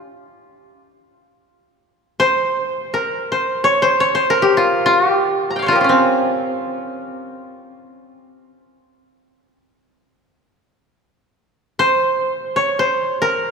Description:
japanese traditional, Japanese chamber music; free time; C in sen; A4 = 440 Hz
koto; solo; 0.0-8.5, 11.8-13.5 s; C4 to Bb5; -15 LUFS; equal
wet church reverb, RT60 3.4 s; minimal, uncompressed stereo recording; -15 LUFS; side -5 dB against mid
0.0-10.8 A section; 10.8-13.5 A section

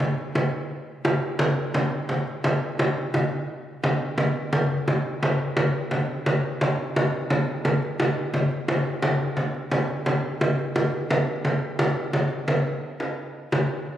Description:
medieval; 116 BPM (dotted quarters); 6/8; straight
frame drum; percussion; 0.0-13.7 s; -22 LUFS; equal
wet scoring stage reverb, RT60 1.8 s; recorded on a phone in the room, studio ambience, compression; -22 LUFS; side -11 dB against mid
0.0-4.2 A section; 4.2-12.5 A section; 12.5-14.0 B section

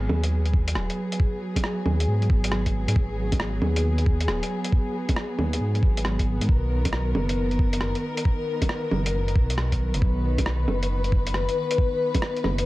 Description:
future garage; 136 BPM; 4/4; swing 65% on 16ths; G# minor; A4 = 440 Hz
dark chamber string section; sustained chords; 0.0-12.7 s; D#3 to B4; -28 LUFS; left 1 dB; vintage 12-bit sampler grit, sidechain pumping
dark detuned saw bass; bass; 0.0-12.7 s; D#1 to G#2; -25 LUFS; equal; tube saturation, sidechain pumping
lo-fi sampler-style drum kit; drums; 0.1-12.6 s; bongos, hi-hat, rim click; -29 LUFS; right 1 dB
electronic kick drum; drums; 0.5-12.2 s; -22 LUFS; equal
light reverb; -22 LUFS; side -18 dB against mid
0.0-12.7 A section
0.0 G#m7; 6.5 Bmaj7

